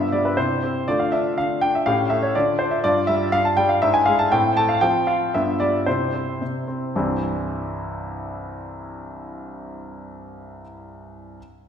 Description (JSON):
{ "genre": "classical-period piano sonatina", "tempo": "107-123 BPM", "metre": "2/4", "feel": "rubato", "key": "C major", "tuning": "A4 = 440 Hz", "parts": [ { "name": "clear concert grand piano", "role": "solo", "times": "0.0-11.4 s", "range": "C2 to A5", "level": "-20 LUFS", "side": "equal", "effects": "none" } ], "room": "wet concert hall reverb, RT60 1.9 s", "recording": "recorded in a church or concert hall", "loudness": "-18 LUFS", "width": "side -8 dB against mid", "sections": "0.0-7.0 A section; 7.0-9.2 B section", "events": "slowing down 4.3-7.0", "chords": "0.4 C; 0.9 Dm; 1.9 A7; 2.3 Dm; 2.8 G5; 3.8 E7/G#; 4.3 Am; 4.8 F5; 5.3 G7; 5.9 C", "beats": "0.37 | 0.87 1.36 | 1.85 2.35 | 2.83 3.32 | 3.82 4.31 | 4.82 5.33 | 5.86 6.41 | 6.96 7.51 | 8.05 8.60" }